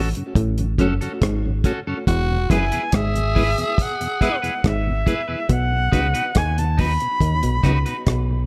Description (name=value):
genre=roots reggae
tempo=70 BPM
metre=4/4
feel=straight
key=E major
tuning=A4 = 440 Hz
part: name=clean electric guitar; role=accompaniment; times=0.0-8.0 s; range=C#4 to B4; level=-31 LUFS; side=equal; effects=none
part: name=deep dub fingered electric bass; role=bass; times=0.0-8.5 s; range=E1 to D#2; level=-24 LUFS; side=equal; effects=none
part: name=deep reggae drum kit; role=drums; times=0.1-8.3 s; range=hi-hat, kick drum, rim click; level=-23 LUFS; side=equal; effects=none
part: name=mellow tonewheel organ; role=accompaniment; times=0.2-8.4 s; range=E2 to F#4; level=-30 LUFS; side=equal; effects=slow rotary speaker, tape echo
part: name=muted clav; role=riff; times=0.4-8.3 s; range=E2 to D#3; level=-28 LUFS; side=equal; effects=none
part: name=breathy tenor saxophone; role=second line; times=2.1-4.4 s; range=E4 to G#4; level=-28 LUFS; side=equal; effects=none
part: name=bright reedy concert flute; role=melody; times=2.5-8.5 s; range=E5 to B5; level=-27 LUFS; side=equal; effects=tape echo
room=studio reverb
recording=echo-heavy mix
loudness=-20 LUFS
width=mono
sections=0.0-8.5 A section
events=none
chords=0.0 F#m; 2.1 E; 5.5 B